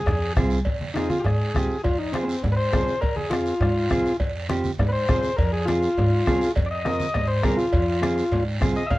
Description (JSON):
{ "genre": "latin, cumbia", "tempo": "204 BPM", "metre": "4/4", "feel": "straight", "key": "F minor", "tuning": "A4 = 440 Hz", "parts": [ { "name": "combo organ", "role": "melody", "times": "0.0-9.0 s", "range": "B3 to F5", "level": "-25 LUFS", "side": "left 2 dB", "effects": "none" }, { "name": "upright bass", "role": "bass", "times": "0.1-9.0 s", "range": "C2 to Ab2", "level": "-26 LUFS", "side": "equal", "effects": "none" }, { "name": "bombo", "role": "percussion", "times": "0.1-9.0 s", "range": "none", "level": "-26 LUFS", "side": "left 1 dB", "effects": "none" }, { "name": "congas", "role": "percussion", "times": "0.1-9.0 s", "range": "none", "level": "-30 LUFS", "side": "equal", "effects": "none" }, { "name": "cowbell and timbales", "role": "percussion", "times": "0.1-9.0 s", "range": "none", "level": "-33 LUFS", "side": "right 3 dB", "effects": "none" }, { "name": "guiro", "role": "percussion", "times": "0.1-9.0 s", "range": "none", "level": "-38 LUFS", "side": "right 3 dB", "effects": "none" }, { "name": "mellow electric guitar", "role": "accompaniment", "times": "0.4-8.8 s", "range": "C4 to Bb4", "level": "-27 LUFS", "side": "right 2 dB", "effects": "none" } ], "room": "light reverb", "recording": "worn, warbling old tape, cassette tape, warbly pitch drift", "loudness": "-20 LUFS", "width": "side -18 dB against mid", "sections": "0.7-9.0 A section", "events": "transistor combo organ solo 0.7-9.0", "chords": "0.0 Fm", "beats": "0.08 0.37 | 0.67 0.96 1.25 1.55 | 1.84 2.14 2.44 2.73 | 3.02 3.32 3.61 3.91 | 4.20 4.50 4.79 5.09 | 5.38 5.68 5.97 6.26 | 6.56 6.85 7.15 7.44 | 7.74 8.03 8.32 8.62 | 8.91" }